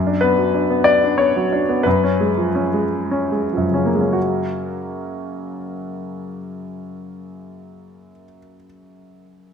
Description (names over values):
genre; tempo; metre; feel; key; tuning
classical, romantic character piece for solo piano; 45-63 BPM (dotted quarters); 6/8; rubato; F# major; A4 = 442 Hz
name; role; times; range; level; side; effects
clear concert grand piano; solo; 0.0-9.5 s; F#2 to D5; -18 LUFS; left 1 dB; none
room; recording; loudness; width
moderate recital hall reverb, RT60 1.6 s; none; -16 LUFS; side -7 dB against mid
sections
0.0-4.2 A section; 4.2-8.7 B section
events
slowing down 0.0-4.2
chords
0.0 Bm/F#; 1.8 C#7/F#; 4.2 F#